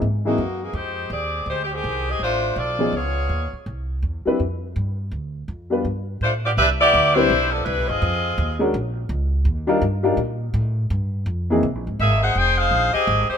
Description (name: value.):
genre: jazz, big band swing.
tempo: 166 BPM.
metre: 4/4.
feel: swing 63% on 8ths.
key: unclear.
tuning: A4 = 440 Hz.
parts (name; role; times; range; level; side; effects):
upright bass; bass; 0.0-13.3 s; F1 to Bb2; -24 LUFS; equal; none.
bright saxophone section; melody; 0.3-3.5, 6.2-8.6, 12.0-13.4 s; Eb3 to G5; -20 LUFS; left 1 dB; none.
warm upright piano; accompaniment; 0.3-0.4, 2.8-11.6 s; E3 to B4; -22 LUFS; left 2 dB; none.
room: light reverb.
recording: minimal, uncompressed stereo recording.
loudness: -19 LUFS.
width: side -7 dB against mid.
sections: 0.0-6.6 A section; 6.6-13.4 B section.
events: none.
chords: 0.0 C7alt; 0.8 Fm9; 2.2 Dm7; 2.9 Db9; 3.7 C; 5.1 Dm; 5.9 G7(no3); 6.6 Cmaj9; 8.0 Fm7; 8.7 Bbm; 9.5 Ebmaj9; 10.9 Fm11; 11.6 Abadd9; 12.4 Fm9.